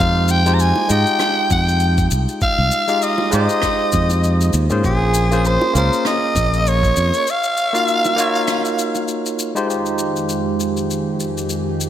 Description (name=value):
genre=sunset chillout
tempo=99 BPM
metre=4/4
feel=swing 56% on 16ths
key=F minor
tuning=A4 = 436 Hz
part: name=growling soprano saxophone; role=melody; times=0.0-9.1 s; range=Ab4 to Bb5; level=-18 LUFS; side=equal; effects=digital delay
part: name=barky tine electric piano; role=accompaniment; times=0.0-11.9 s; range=Ab3 to F5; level=-21 LUFS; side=equal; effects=auto-pan, low-pass filter, digital delay
part: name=modern bright fingered electric bass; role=bass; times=0.0-7.1 s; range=Bb1 to Ab2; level=-17 LUFS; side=equal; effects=none
part: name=shaker and rim click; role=drums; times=0.3-11.9 s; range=none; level=-27 LUFS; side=left 3 dB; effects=gated reverb
part: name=bongos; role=percussion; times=0.8-9.1 s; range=none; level=-28 LUFS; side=right 2 dB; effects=none
part: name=electronic kick drum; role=drums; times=1.5-6.9 s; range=none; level=-22 LUFS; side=equal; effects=none
part: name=airy breathy pad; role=sustained chords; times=9.7-11.9 s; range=F2 to G4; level=-22 LUFS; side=right 2 dB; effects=chorus
room=moderate plate reverb, RT60 2.2 s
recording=bright 1980s-style digital production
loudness=-15 LUFS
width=side -10 dB against mid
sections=0.0-9.7 A section; 9.7-11.9 B section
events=break 7.3-9.7; filter sweep on tine electric piano 9.7-11.9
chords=0.0 Fm9; 4.8 Bbm9; 7.3 Ebm9; 9.7 Fm9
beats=0.60 1.21 1.81 | 2.42 3.02 3.63 4.24 | 4.84 5.45 6.05 6.66 | 7.26 7.87 8.48 9.08 | 9.69 10.29 10.90 11.51